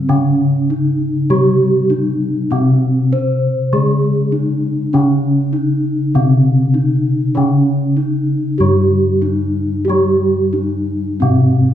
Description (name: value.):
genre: Javanese gamelan.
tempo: 98 BPM.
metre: 4/4.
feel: uneven beats.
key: C pelog.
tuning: A4 = 440 Hz.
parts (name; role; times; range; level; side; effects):
gamelan-type bronze metallophone; melody; 0.0-11.7 s; C4 to C5; -17 LUFS; right 1 dB; none.
gamelan-type bronze metallophone; accompaniment; 0.0-11.7 s; C3 to Ab3-20c; -16 LUFS; left 1 dB; none.
gamelan-type bossed gongs; bass; 0.0-11.7 s; G2-30c to G4-30c; -18 LUFS; left 1 dB; none.
room: wet recital hall reverb, RT60 1.7 s.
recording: minimal, uncompressed stereo recording.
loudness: -13 LUFS.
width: side -10 dB against mid.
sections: 0.0-11.7 A section.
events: none.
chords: none.